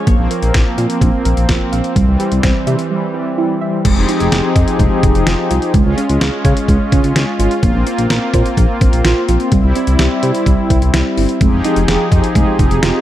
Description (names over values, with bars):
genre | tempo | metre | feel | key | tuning
synth-pop | 127 BPM | 4/4 | straight | F minor | A4 = 439 Hz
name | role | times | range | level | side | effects
brassy analog pad | sustained chords | 0.0-13.0 s | E3 to Ab4 | -17 LUFS | left 1 dB | chorus, tremolo
soft round pluck | arpeggios | 0.1-13.0 s | G3 to F5 | -20 LUFS | right 5 dB | chorus, ping-pong delay
smooth synth bass | bass | 0.1-12.9 s | F1 to Db3 | -15 LUFS | equal | none
detuned 8-bit digital drum machine | drums | 0.1-12.9 s | crash cymbal, hi-hat, kick drum, snare drum | -15 LUFS | equal | none
room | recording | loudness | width
little or no reverb | dark, warm production | -11 LUFS | side -13 dB against mid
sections
0.0-3.9 A section; 3.9-13.0 B section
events
break 2.9-3.9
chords
0.1 Bbsus2; 2.0 C; 3.9 Fm7; 5.7 Db; 7.6 Bbsus2; 9.5 C; 11.4 Fm7